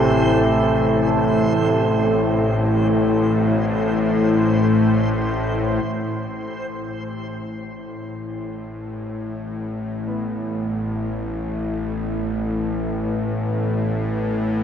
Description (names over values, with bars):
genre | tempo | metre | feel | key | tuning
ambient | free time | none | none | A minor | A4 = 439 Hz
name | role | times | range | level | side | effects
deep dark ambient pad | sustained chords | 0.0-14.6 s | A3 to B4 | -22 LUFS | left 1 dB | chorus, built-in reverb
warm grand piano | arpeggios | 0.0-14.6 s | A2 to B3 | -28 LUFS | right 2 dB | diffuse ambient delay
bowed-like drone | drone | 0.0-14.6 s | A1 to A2 | -24 LUFS | equal | built-in reverb
backwards swelling texture | texture | 0.0-5.9 s | C5 | -30 LUFS | equal | built-in reverb
room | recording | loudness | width
wet cathedral reverb, RT60 6.5 s | nothing above 10.3 kHz | -19 LUFS | side -8 dB against mid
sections
0.0-5.9 A section; 5.9-14.6 B section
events
fade-in on synth drone 5.9-14.6; fade-in on ambient pad 5.9-14.6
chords
0.0 Am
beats
free time